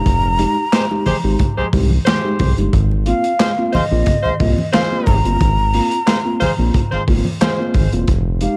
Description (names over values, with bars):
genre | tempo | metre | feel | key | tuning
funk | 90 BPM | 4/4 | straight | unclear | A4 = 438 Hz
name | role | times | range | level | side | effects
breathy hollow jazz flute | melody | 0.0-8.6 s | Eb5 to Bb5 | -23 LUFS | equal | cassette tape
mellow tine electric piano | stabs | 0.0-8.6 s | Ab2 to G4 | -24 LUFS | equal | cassette tape
round analog bass | bass | 0.0-8.5 s | E1 to C2 | -20 LUFS | equal | tube saturation
crunchy breakbeat drum kit | drums | 0.1-8.6 s | handclaps, hi-hat, kick drum, snare drum | -21 LUFS | equal | none
congas | percussion | 0.1-7.9 s | none | -26 LUFS | equal | none
warm horn section | second line | 0.7-7.9 s | Ab3 to C5 | -25 LUFS | equal | cassette tape
room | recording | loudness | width
light reverb, small room reverb | home recording on cassette | -16 LUFS | mono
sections
0.0-8.6 A section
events
none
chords
0.0 Fm9; 2.7 Ab6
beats
| 0.06 0.73 1.40 2.06 | 2.73 3.40 4.07 4.74 | 5.41 6.07 6.74 7.41 | 8.08